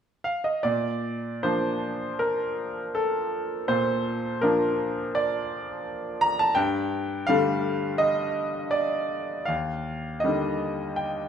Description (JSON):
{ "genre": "classical, lyrical solo piano", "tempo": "81 BPM", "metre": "4/4", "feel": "uneven beats, rubato", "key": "unclear", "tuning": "A4 = 441 Hz", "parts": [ { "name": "bright concert grand piano", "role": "solo", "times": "0.2-11.3 s", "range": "Eb2 to Bb5", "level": "-24 LUFS", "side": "equal", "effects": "none" } ], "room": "wet recital hall reverb, RT60 1.4 s", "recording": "minimal, uncompressed stereo recording", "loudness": "-24 LUFS", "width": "side -8 dB against mid", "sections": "0.6-11.3 A section", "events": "none", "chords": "0.0 N.C.; 0.6 Bbmaj7; 6.6 Gsus2; 9.5 Ebmaj7", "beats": "| 0.64 1.43 2.20 2.94 | 3.68 4.42 5.14 5.85 | 6.56 7.28 8.00 8.74 | 9.49 10.24 11.00" }